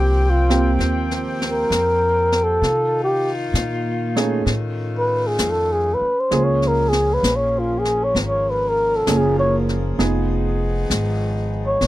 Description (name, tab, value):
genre	jazz ballad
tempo	65 BPM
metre	4/4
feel	swing 67% on 8ths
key	unclear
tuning	A4 = 440 Hz
part	breathy flugelhorn	melody	0.0-11.9 s	F4 to Db5	-18 LUFS	equal	none
part	warm baby grand piano	accompaniment	0.0-11.8 s	A3 to G5	-25 LUFS	right 4 dB	none
part	mellow saxophone section	sustained chords	0.0-11.9 s	Eb3 to G5	-28 LUFS	left 3 dB	none
part	upright bass	bass	0.0-11.9 s	E1 to C3	-22 LUFS	equal	none
part	jazz brush drum kit	drums	0.5-11.9 s	brushed snare drum, hi-hat, snare drum	-26 LUFS	left 2 dB	none
room	little or no reverb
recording	dry, close 1970s-style studio recording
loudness	-17 LUFS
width	side -15 dB against mid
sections	0.0-11.9 A section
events	flugelhorn solo 0.0-11.9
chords	0.0 Abmaj13 (rootless); 2.6 Cm7; 4.5 Faug7; 6.3 Bbm7; 10.0 Fm7b5